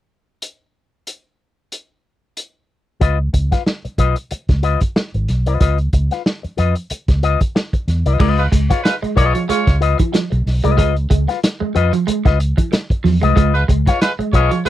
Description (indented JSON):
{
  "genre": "funk",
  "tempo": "93 BPM",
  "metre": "4/4",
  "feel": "swing 56% on 16ths",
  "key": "Db mixolydian",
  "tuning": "A4 = 444 Hz",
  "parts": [
    { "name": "vintage drum kit", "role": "drums", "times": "0.4-14.7 s", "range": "crash cymbal, hi-hat, kick drum, snare drum", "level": "-17 LUFS", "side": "equal", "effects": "none" },
    { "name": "electric guitar with an envelope filter", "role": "accompaniment", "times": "3.0-14.7 s", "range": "F4 to F5", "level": "-19 LUFS", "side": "left 10 dB", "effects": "none" },
    { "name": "vintage muted fingered electric bass", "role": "bass", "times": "3.0-14.7 s", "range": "Ab1 to F2", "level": "-16 LUFS", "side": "equal", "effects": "none" },
    { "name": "electric guitar at the edge of break-up", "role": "riff", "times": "8.2-14.7 s", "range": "Fb3 to Ab3", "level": "-20 LUFS", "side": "right 5 dB", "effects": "phaser" },
    { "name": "mellow horn section", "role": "second line", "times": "8.4-14.7 s", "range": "Ab3 to Db5", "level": "-20 LUFS", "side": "right 2 dB", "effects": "none" }
  ],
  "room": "little or no reverb",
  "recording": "dry, close 1970s-style studio recording",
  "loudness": "-14 LUFS",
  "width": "side -13 dB against mid",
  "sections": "0.4-3.0 A section; 3.0-8.2 B section; 8.2-14.7 C section",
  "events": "none",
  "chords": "0.4 N.C.; 3.0 Db9"
}